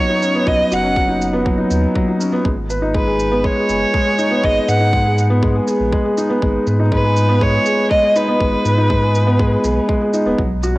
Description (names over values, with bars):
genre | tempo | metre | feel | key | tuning
piano and strings electronica | 121 BPM | 4/4 | straight | unclear | A4 = 440 Hz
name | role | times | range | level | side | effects
warm violin | melody | 0.0-9.9 s | B4 to F#5 | -18 LUFS | equal | cassette tape
felt-muted upright piano | riff | 0.0-10.8 s | F#3 to B4 | -17 LUFS | equal | cassette tape, analog delay
shaker | drums | 0.2-10.7 s | none | -33 LUFS | right 2 dB | studio ambience
warm sub bass | bass | 0.5-10.8 s | D#1 to G#2 | -18 LUFS | equal | sidechain pumping
electronic kick drum | drums | 0.5-10.5 s | none | -20 LUFS | equal | studio ambience
room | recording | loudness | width
moderate spring reverb, RT60 2.3 s | home recording on cassette | -14 LUFS | side -19 dB against mid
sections
0.0-10.8 A section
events
none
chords
0.0 Badd9; 2.5 G#m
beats
| 0.47 0.97 1.46 1.96 | 2.46 2.95 3.45 3.94 | 4.44 4.93 5.43 5.93 | 6.42 6.92 7.41 7.91 | 8.40 8.90 9.40 9.89 | 10.39